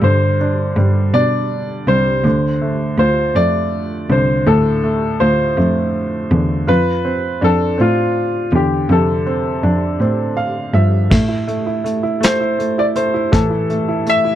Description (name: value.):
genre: six-eight pop ballad.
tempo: 54 BPM (dotted quarters).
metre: 6/8.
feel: straight.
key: A minor.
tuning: A4 = 440 Hz.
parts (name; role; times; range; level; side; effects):
clear concert grand piano; melody; 0.0-14.4 s; F4 to E5; -18 LUFS; left 2 dB; none.
bright upright piano; accompaniment; 0.0-14.4 s; A2 to F5; -20 LUFS; right 2 dB; none.
rich cello; bass; 0.0-14.4 s; C2 to B2; -17 LUFS; equal; none.
vintage brush drum kit; drums; 11.1-14.2 s; crash cymbal, hi-hat, kick drum, snare drum; -16 LUFS; equal; none.
room: little or no reverb.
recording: dry, close 1970s-style studio recording.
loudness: -14 LUFS.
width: side -11 dB against mid.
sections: 0.0-11.1 A section; 11.1-14.4 B section.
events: upright piano fill 10.0-11.1.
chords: 0.0 Gsus4; 2.2 Dm7; 6.7 F6; 11.1 A5.